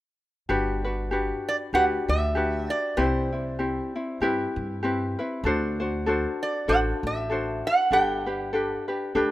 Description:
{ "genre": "Hawaiian", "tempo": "97 BPM", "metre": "4/4", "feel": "swing 57% on 8ths", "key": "G major", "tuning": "A4 = 440 Hz", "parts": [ { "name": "ukulele", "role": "accompaniment", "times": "0.5-9.3 s", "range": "C4 to C5", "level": "-26 LUFS", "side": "left 2 dB", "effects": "none" }, { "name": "upright bass", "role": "bass", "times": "0.5-9.3 s", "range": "G1 to G2", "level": "-31 LUFS", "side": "equal", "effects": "none" }, { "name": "metal-body resonator slide guitar", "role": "melody", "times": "1.5-9.1 s", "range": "C5 to G5", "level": "-25 LUFS", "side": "right 2 dB", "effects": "none" } ], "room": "light reverb, small room ambience", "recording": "rough home demo mix", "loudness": "-23 LUFS", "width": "side -15 dB against mid", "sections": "0.5-9.3 A section", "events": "none", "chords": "0.5 Gmaj7; 3.0 Cmaj7; 5.4 D7; 7.9 Gadd9", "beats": "| 0.50 1.12 1.74 2.36 | 2.98 3.59 4.21 4.83 | 5.45 6.07 6.68 7.30 | 7.92 8.54 9.15" }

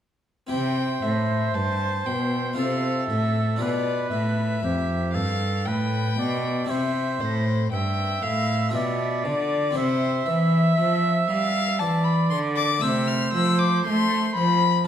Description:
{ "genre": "classical, baroque-style sonata movement with continuo", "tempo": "58 BPM", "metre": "3/4", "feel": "straight", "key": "C major", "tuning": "A4 = 440 Hz", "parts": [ { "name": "warm violin", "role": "melody", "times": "0.5-14.9 s", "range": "C5 to F6", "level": "-27 LUFS", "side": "left 7 dB", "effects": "none" }, { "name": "clear oboe", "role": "second line", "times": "0.5-14.6 s", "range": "G4 to E5", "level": "-28 LUFS", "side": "right 6 dB", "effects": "none" }, { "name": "harpsichord", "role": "accompaniment", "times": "0.5-14.9 s", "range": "F2 to A4", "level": "-28 LUFS", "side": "left 2 dB", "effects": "none" }, { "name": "rich cello", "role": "bass", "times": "0.5-14.9 s", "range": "F2 to A3", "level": "-25 LUFS", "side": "right 2 dB", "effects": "none" } ], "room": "moderate recital hall reverb, RT60 1.3 s", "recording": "dark, warm production", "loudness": "-21 LUFS", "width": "side -9 dB against mid", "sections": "0.5-14.9 A section", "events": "none", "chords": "0.5 C; 2.6 F/C; 3.6 G7; 6.7 C; 8.8 G7/B; 9.8 C; 12.8 Am/C", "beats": "| 0.51 1.55 2.58 | 3.61 4.64 5.67 | 6.70 7.73 8.75 | 9.77 10.78 11.80 | 12.83 13.86" }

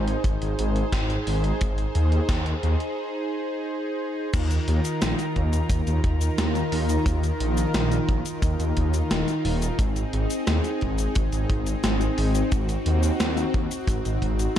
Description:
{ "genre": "synthwave", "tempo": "88 BPM", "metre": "4/4", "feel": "straight", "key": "unclear", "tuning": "A4 = 442 Hz", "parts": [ { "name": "soft supersaw", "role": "sustained chords", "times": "0.0-14.6 s", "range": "Eb3 to Bb5", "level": "-28 LUFS", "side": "equal", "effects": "sidechain pumping" }, { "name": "wide detuned saw bass", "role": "bass", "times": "0.0-14.6 s", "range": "Eb1 to Eb2", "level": "-24 LUFS", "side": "equal", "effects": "chorus, sidechain pumping" }, { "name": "gated 80s digital drum machine", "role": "drums", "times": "0.1-14.6 s", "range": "cabasa, crash cymbal, hi-hat, snare drum", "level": "-30 LUFS", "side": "left 1 dB", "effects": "gated reverb, gated reverb snare, high-pass filter on hats, high-pass filter on snare, high-pass filter on cymbals, high-pass filter on perc" }, { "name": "kick drum", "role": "drums", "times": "0.2-14.4 s", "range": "none", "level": "-27 LUFS", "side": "equal", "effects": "none" } ], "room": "light reverb, small room ambience", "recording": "dark, warm production", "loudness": "-22 LUFS", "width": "side -10 dB against mid", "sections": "0.0-4.3 A section; 4.3-14.6 B section", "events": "break 3.0-4.3", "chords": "0.0 Ab; 4.3 Ebsus2; 9.8 Ab", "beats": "0.25 0.93 | 1.61 2.29 2.97 3.65 | 4.34 5.02 5.70 6.38 | 7.06 7.75 8.43 9.11 | 9.79 10.47 11.15 11.84 | 12.52 13.20 13.88 14.56" }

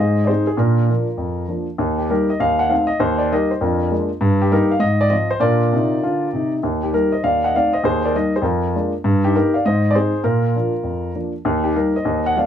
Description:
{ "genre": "jazz, stride piano", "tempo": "199 BPM", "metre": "4/4", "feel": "swing 65% on 8ths", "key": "Eb major", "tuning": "A4 = 440 Hz", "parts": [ { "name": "warm grand piano", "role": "solo", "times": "0.0-12.5 s", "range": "Eb2 to Gb5", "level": "-16 LUFS", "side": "equal", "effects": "none" } ], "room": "wet booth ambience, RT60 0.2 s", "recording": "none", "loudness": "-16 LUFS", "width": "side -9 dB against mid", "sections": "0.0-6.6 A section; 6.6-12.5 A section", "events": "none", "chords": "0.0 Ab; 0.6 Bb; 1.8 Eb; 2.4 Ebdim7; 3.0 Eb; 3.6 Bb7/F; 4.2 Eb/G; 4.8 Fm/Ab; 5.4 Bb; 6.6 Eb; 7.2 F13b9/Eb; 7.8 Eb; 8.4 Bb7/F; 9.0 Eb/G; 9.6 Ab; 10.2 Bb; 11.4 Eb", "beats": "0.29 | 0.59 0.89 1.20 1.50 | 1.80 2.10 2.40 2.71 | 3.01 3.31 3.61 3.92 | 4.22 4.52 4.82 5.12 | 5.42 5.72 6.03 6.33 | 6.63 6.93 7.23 7.53 | 7.83 8.13 8.44 8.74 | 9.04 9.34 9.64 9.94 | 10.24 10.54 10.84 11.14 | 11.44 11.74 12.05 12.35" }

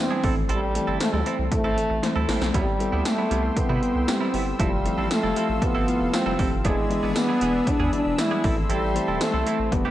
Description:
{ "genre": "1980s-style pop", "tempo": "117 BPM", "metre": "4/4", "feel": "straight", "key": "C major", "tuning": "A4 = 438 Hz", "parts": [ { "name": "mellow French horn", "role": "melody", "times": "0.0-9.9 s", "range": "G3 to E4", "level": "-25 LUFS", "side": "equal", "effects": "none" }, { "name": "FM electric piano with auto-pan", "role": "accompaniment", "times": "0.0-9.9 s", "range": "D3 to C5", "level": "-28 LUFS", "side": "left 2 dB", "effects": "none" }, { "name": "direct-recorded clean electric guitar", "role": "riff", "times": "0.1-9.9 s", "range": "G3 to A4", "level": "-32 LUFS", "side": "right 5 dB", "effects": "analog chorus, slapback echo" }, { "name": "round analog bass", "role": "bass", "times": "0.2-9.9 s", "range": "E1 to C3", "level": "-29 LUFS", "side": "equal", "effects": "none" }, { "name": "80s electronic pad drums", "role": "drums", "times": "0.2-9.9 s", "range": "hi-hat, kick drum, snare drum, tambourine, toms", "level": "-26 LUFS", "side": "equal", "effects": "gated reverb on snare and toms, vintage 12-bit sampler grit" }, { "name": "brassy analog pad", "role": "sustained chords", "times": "2.5-9.9 s", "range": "G4 to E6", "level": "-33 LUFS", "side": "equal", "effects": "chorus" } ], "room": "moderate lush hall reverb, RT60 1.6 s", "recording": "big arena sound, cassette tape", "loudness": "-21 LUFS", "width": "side -13 dB against mid", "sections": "0.0-9.9 A section", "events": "drum fill 2.0-2.5, 9.7", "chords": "0.2 Cmaj7; 4.6 Fmaj7; 6.6 E7; 8.4 Am", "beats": "| 0.49 1.00 1.52 2.03 | 2.54 3.06 3.57 4.08 | 4.59 5.11 5.62 6.13 | 6.65 7.16 7.67 8.19 | 8.70 9.21 9.72" }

